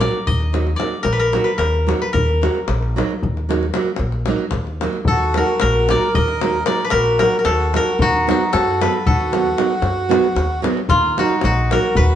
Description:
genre	balkan folk, Balkan wedding band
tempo	226 BPM (eighths)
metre	11/8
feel	straight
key	Eb hungarian minor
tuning	A4 = 440 Hz
part	koto	melody	0.0-12.2 s	F4 to Eb5	-19 LUFS	left 2 dB	none
part	nylon-string guitar	accompaniment	0.0-11.9 s	Gb3 to Gb4	-22 LUFS	right 5 dB	none
part	upright bass	bass	0.0-12.2 s	Bb1 to F#2	-21 LUFS	equal	none
part	davul	percussion	0.0-12.2 s	none	-24 LUFS	left 3 dB	none
part	accordion	second line	5.1-12.2 s	Bb3 to Bb4	-22 LUFS	right 2 dB	none
room	wet stone room reverb, RT60 1.1 s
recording	band playing live in one room, nothing above 10.3 kHz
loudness	-15 LUFS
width	side -10 dB against mid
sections	0.0-5.1 A section; 5.1-12.2 A section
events	none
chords	0.0 Ebm; 8.0 B/D#; 10.9 Ebm

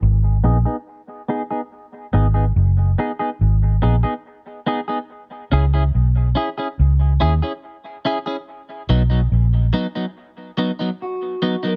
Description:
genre	reggae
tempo	71 BPM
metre	4/4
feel	straight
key	G# minor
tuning	A4 = 439 Hz
part	vintage muted fingered electric bass	bass	0.0-9.7 s	F#1 to D#2	-17 LUFS	equal	none
part	clean electric guitar	accompaniment	0.4-11.7 s	F#3 to G#4	-26 LUFS	equal	analog chorus, low-pass filter, dub echo
part	electric guitar at the edge of break-up	melody	11.0-11.8 s	F#4 to A#4	-27 LUFS	equal	subtle chorus
room	digital ambience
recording	dry, close 1970s-style studio recording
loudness	-19 LUFS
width	mono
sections	0.0-11.8 A section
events	filter sweep on clean electric guitar 0.0-11.8; break 10.2-11.8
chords	0.0 G#m; 5.1 C#m; 8.5 B

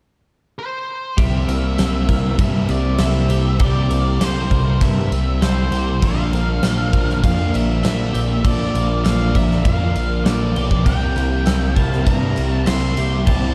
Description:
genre	rock, shoegaze and dream pop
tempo	99 BPM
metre	4/4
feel	straight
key	C mixolydian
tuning	A4 = 440 Hz
part	octave-fuzz lead guitar	melody	0.6-13.5 s	C5 to C6	-29 LUFS	equal	distortion, digital delay
part	string machine, violins	sustained chords	1.2-13.5 s	Bb3 to E5	-34 LUFS	equal	none
part	twelve-string electric guitar	arpeggios	1.2-13.5 s	G4 to Bb4	-35 LUFS	equal	ensemble chorus, digital delay
part	biting overdriven guitar	riff	1.2-13.5 s	Bb2 to E4	-28 LUFS	equal	reverse reverb
part	thick fuzz guitar	riff	1.2-13.5 s	Bb2 to C4	-25 LUFS	equal	distortion, analog chorus
part	growling picked electric bass	bass	1.2-13.5 s	Bb1 to G2	-23 LUFS	equal	overdrive
part	gated 80s drum kit	drums	1.2-13.4 s	crash cymbal, kick drum, snare drum	-23 LUFS	equal	none
part	tambourine	percussion	1.5-13.1 s	none	-43 LUFS	equal	none
room	moderate concert hall reverb, RT60 2.4 s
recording	dark, warm production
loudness	-18 LUFS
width	mono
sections	0.0-1.2 A section; 1.2-13.5 B section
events	none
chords	0.0 N.C.; 1.2 C7; 6.0 Bb; 10.9 C7

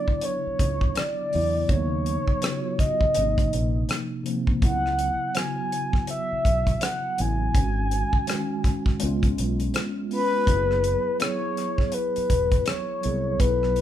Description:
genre	R&B, neo-soul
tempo	82 BPM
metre	4/4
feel	swing 60% on 16ths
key	unclear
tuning	A4 = 439 Hz
part	mellow horn-like synth lead	melody	0.0-13.8 s	B4 to G#5	-26 LUFS	left 1 dB	chorus
part	mellow tine electric piano	accompaniment	0.0-13.8 s	B#2 to A4	-29 LUFS	equal	medium stereo tremolo
part	damped 70s drum kit	drums	0.1-13.8 s	hi-hat, kick drum, rim click	-24 LUFS	equal	none
part	fingered electric bass	bass	0.5-13.8 s	E1 to E2	-27 LUFS	equal	none
room	light reverb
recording	band playing live in one room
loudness	-22 LUFS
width	side -11 dB against mid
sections	0.0-13.8 A section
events	none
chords	0.0 D6; 1.7 Badd9/D#; 3.2 G#; 4.6 C#m7; 7.5 G#5; 9.0 C#7; 10.5 F#5

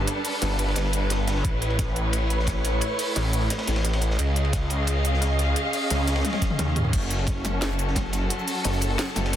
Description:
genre	dark technical drum and bass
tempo	175 BPM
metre	4/4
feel	straight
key	unclear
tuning	A4 = 440 Hz
part	muted studio string section	sustained chords	0.0-9.4 s	F#3 to E#5	-28 LUFS	equal	sidechain pumping
part	snarling distorted saw bass	bass	0.0-9.4 s	F#1 to D#2	-24 LUFS	equal	distortion, overdrive, sidechain pumping
part	crunchy breakbeat drum kit	drums	0.1-9.4 s	hi-hat, ride cymbal, snare drum	-34 LUFS	equal	high-pass filter on cymbals, high-pass filter on hats, high-pass filter on snare, high-pass filter on room
part	drum and bass drum kit	drums	0.1-9.4 s	crash cymbal, hi-hat, shaker, snare drum, toms	-29 LUFS	equal	none
part	electronic kick drum	drums	1.4-8.0 s	none	-27 LUFS	equal	none
room	light reverb, small room ambience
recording	dense, heavily limited modern master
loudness	-22 LUFS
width	side -11 dB against mid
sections	0.0-9.4 A section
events	drum fill 6.2-6.9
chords	0.0 Gadd9; 1.4 Aadd9; 4.2 C#; 6.9 F#m

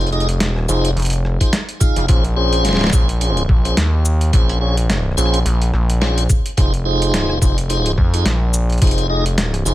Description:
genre	glitch hop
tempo	107 BPM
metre	4/4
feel	swing 57% on 16ths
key	Bb minor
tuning	A4 = 440 Hz
part	tonewheel organ	stabs	0.0-9.7 s	Db4 to F5	-21 LUFS	equal	slow rotary speaker, sidechain pumping, digital delay
part	gritty driven synth bass	bass	0.0-9.7 s	F1 to F2	-17 LUFS	equal	tube saturation
part	boom bap sampler-style drum kit	drums	0.0-9.7 s	hi-hat, rim click, shaker, snare drum	-22 LUFS	equal	studio ambience
part	electronic kick drum	drums	1.4-8.9 s	none	-15 LUFS	equal	studio ambience
room	digital ambience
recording	none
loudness	-14 LUFS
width	side -15 dB against mid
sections	0.0-9.7 A section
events	none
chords	0.0 Fm7; 2.1 Bbm7; 6.6 Fm7

